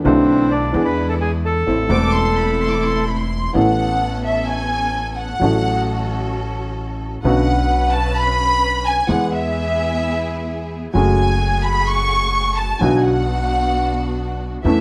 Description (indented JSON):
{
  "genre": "tango",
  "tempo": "130 BPM",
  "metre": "4/4",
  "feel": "rubato",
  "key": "A minor, A major from 3.5 s",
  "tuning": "A4 = 440 Hz",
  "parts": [
    { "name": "clear upright piano", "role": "accompaniment", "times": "0.0-14.8 s", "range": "E1 to A4", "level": "-23 LUFS", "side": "equal", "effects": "none" },
    { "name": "clear studio string section", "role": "stabs", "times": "0.0-14.8 s", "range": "G#3 to B4", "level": "-30 LUFS", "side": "equal", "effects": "none" },
    { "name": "upright bass", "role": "bass", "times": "0.0-14.8 s", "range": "E1 to E2", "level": "-24 LUFS", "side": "equal", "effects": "none" },
    { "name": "bandoneon", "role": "melody", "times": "0.1-3.0 s", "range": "C4 to B5", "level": "-23 LUFS", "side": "equal", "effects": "none" },
    { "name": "warm studio violin section", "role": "second line", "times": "1.9-14.8 s", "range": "E5 to D6", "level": "-23 LUFS", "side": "equal", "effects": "none" }
  ],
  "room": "moderate large studio reverb, RT60 0.9 s",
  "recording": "none",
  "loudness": "-18 LUFS",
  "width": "mono",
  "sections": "0.0-3.5 A section; 3.5-14.8 B section",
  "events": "violin section solo 3.5-14.8",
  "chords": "0.0 E7sus4; 0.7 E7; 1.7 Am; 3.5 Aadd9; 5.4 F#m/A; 7.2 Bmadd9; 9.1 E; 10.9 F#madd9; 12.8 Bm"
}